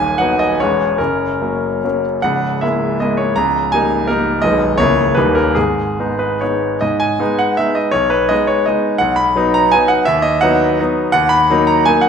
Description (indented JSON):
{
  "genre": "classical, romantic triple-time dance for piano with dotted rhythms",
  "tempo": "132-181 BPM",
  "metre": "3/4",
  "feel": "rubato",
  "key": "G# minor",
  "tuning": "A4 = 439 Hz",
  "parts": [
    { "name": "bright grand piano", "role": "solo", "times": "0.0-12.1 s", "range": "B0 to B5", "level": "-13 LUFS", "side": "equal", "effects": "none" }
  ],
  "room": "wet recital hall reverb, RT60 1.7 s",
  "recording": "minimal, uncompressed stereo recording",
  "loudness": "-13 LUFS",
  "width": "side -7 dB against mid",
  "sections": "0.0-6.8 A section; 6.8-12.1 B section",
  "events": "none",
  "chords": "0.0 B/D#; 0.6 C#m7/E; 1.0 F#; 2.2 A#m7b5/C#; 3.4 D#7/C#; 4.4 G#m/B; 4.8 A#dim/C#; 5.2 D#; 5.6 G#m; 7.9 G#m/B; 9.0 B; 10.1 B/D#; 11.1 D#m",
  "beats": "0.19 0.59 | 0.99 1.41 1.84 | 2.24 2.63 3.02 | 3.37 3.72 4.08 | 4.42 4.78 5.16 | 5.55 5.98 6.42 | 6.82 7.21 7.58 | 7.94 8.31 8.67 | 9.01 9.36 9.73 | 10.07 10.42 10.79 | 11.14 11.49 11.86"
}